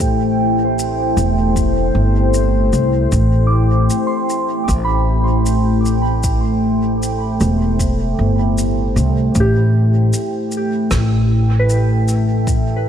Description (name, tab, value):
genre	ambient dub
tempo	77 BPM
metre	4/4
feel	swing 58% on 16ths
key	A minor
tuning	A4 = 441 Hz
part	deep dark ambient pad	sustained chords	0.0-12.9 s	A3 to G5	-18 LUFS	equal	chorus, built-in reverb
part	soft synth bell	arpeggios	0.0-12.9 s	G4 to D6	-26 LUFS	right 2 dB	chorus, low-pass filter, tape echo
part	upright bass	bass	0.0-12.9 s	E1 to C2	-16 LUFS	equal	tube saturation
part	electronic kick drum	drums	0.0-12.7 s	none	-20 LUFS	equal	none
part	shaker and rim click	drums	0.8-12.7 s	none	-29 LUFS	left 2 dB	dub echo
room	light reverb, small room reverb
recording	none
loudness	-14 LUFS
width	side -9 dB against mid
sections	0.0-12.9 A section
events	filter sweep on synth bell 0.0-12.9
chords	0.0 Am7; 9.4 Em